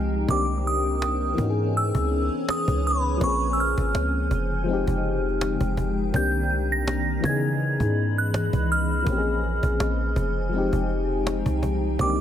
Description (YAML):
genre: contemporary R&B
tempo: 82 BPM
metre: 4/4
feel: swing 54% on 16ths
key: unclear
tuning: A4 = 440 Hz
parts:
  - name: FM electric piano with tremolo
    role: accompaniment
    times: 0.0-12.2 s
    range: D3 to Ab4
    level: -27 LUFS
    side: left 6 dB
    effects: tape echo
  - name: granular cloud pad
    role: sustained chords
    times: 0.0-12.2 s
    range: Db3 to Cb6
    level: -31 LUFS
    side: right 1 dB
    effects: built-in reverb
  - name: warm 808-style bass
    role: bass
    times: 0.0-12.2 s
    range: F1 to Db3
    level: -26 LUFS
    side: right 1 dB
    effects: none
  - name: glassy synth bell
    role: melody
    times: 0.3-12.2 s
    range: Cb6 to Bb6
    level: -28 LUFS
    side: right 2 dB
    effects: chorus, tape echo
  - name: cajon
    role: drums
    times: 0.3-12.2 s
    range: none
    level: -29 LUFS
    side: right 1 dB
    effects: none
room: little or no reverb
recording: echo-heavy mix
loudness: -22 LUFS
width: side -10 dB against mid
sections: 0.0-12.2 A section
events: none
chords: 0.3 Cm9; 1.4 Dbm9; 3.2 Bbm9; 4.7 Fm9; 6.1 Cm9; 7.2 Dbm9; 9.1 Bbm9; 10.5 Fm9